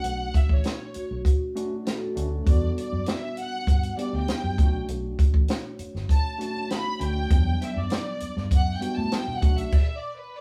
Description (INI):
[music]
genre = lush 1970s-style soul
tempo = 99 BPM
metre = 4/4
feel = straight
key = E dorian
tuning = A4 = 441 Hz
[part]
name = warm studio violin section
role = melody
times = 0.0-10.4 s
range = B4 to B5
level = -35 LUFS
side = equal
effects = none
[part]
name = tine electric piano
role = accompaniment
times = 0.0-9.8 s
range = F#3 to G4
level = -35 LUFS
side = equal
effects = overdrive
[part]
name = vintage muted fingered electric bass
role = bass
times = 0.0-9.7 s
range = G1 to B2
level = -31 LUFS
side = equal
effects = none
[part]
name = compact cocktail drum kit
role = drums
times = 0.0-9.9 s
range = crash cymbal, hi-hat, kick drum, snare drum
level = -24 LUFS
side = equal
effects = none
[part]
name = vibraphone with medium hard mallets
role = texture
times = 1.0-9.7 s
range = F#4 to E5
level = -40 LUFS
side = equal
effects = none
[sound]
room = moderate studio reverb, RT60 0.6 s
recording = band playing live in one room, small room ambience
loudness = -25 LUFS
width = mono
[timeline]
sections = 0.0-10.4 A section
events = violin section solo 0.0-10.4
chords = 0.0 Bm7; 2.5 Em9 (rootless); 4.6 Bm7; 7.3 Em9; 9.4 Bm7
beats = | 0.04 0.65 1.25 1.86 | 2.46 3.07 3.68 4.28 | 4.89 5.49 6.10 6.70 | 7.31 7.91 8.52 9.12 | 9.73 10.34